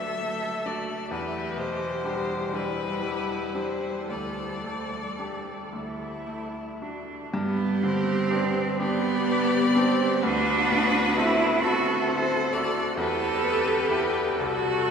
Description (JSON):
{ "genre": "classical, slow romantic movement for piano quartet", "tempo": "36-45 BPM (dotted quarters)", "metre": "6/8", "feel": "rubato", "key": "G major", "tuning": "A4 = 440 Hz", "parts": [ { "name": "rich violin", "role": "melody", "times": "0.0-14.9 s", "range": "A4 to E5", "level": "-31 LUFS", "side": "left 4 dB", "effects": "none" }, { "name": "rich cello", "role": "second line", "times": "0.0-14.9 s", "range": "E3 to A4", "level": "-27 LUFS", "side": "right 2 dB", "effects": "none" }, { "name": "bright concert grand piano", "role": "accompaniment", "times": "0.0-14.9 s", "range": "C2 to A4", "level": "-29 LUFS", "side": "equal", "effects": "none" }, { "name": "rich viola", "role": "accompaniment", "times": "0.0-14.9 s", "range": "E4 to A4", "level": "-32 LUFS", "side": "equal", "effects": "none" } ], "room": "wet cathedral reverb, RT60 6.8 s", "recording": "heard from further back in the room", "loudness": "-23 LUFS", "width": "side -6 dB against mid", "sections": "0.0-7.3 A section; 7.3-14.9 A section", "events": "none", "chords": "0.0 D; 1.1 Em7; 4.1 Dsus4; 5.7 D; 7.3 G; 10.2 D7; 13.0 Em; 14.4 Am/C" }